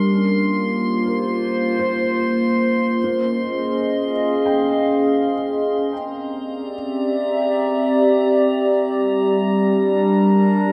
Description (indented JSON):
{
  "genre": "ambient",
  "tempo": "61 BPM",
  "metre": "3/4",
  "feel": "straight",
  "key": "unclear",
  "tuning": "A4 = 441 Hz",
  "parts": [
    { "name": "warbly tape-like pad", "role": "sustained chords", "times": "0.0-10.7 s", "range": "G3 to F5", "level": "-20 LUFS", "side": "equal", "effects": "chorus, built-in reverb" },
    { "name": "drifting glass-harmonics texture", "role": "texture", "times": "0.0-10.7 s", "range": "Bb5 to C6", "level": "-31 LUFS", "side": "equal", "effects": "chorus, built-in reverb" },
    { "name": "felt-muted upright piano", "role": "arpeggios", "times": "0.1-6.7 s", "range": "Bb3 to G5", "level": "-35 LUFS", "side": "equal", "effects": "diffuse ambient delay" }
  ],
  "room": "wet cathedral reverb, RT60 5.8 s",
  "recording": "in a vast, echoing space",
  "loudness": "-19 LUFS",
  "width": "mono",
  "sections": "0.0-10.7 A section",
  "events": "fade-in on felt piano 0.0-10.7; fade-out on synth texture 0.0-10.7",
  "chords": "0.0 Bbm; 3.0 Dbmaj7; 5.9 C7; 8.9 Gm",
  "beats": "| 0.02 1.00 1.99 | 2.97 3.95 4.94 | 5.92 6.90 7.89 | 8.87 9.86"
}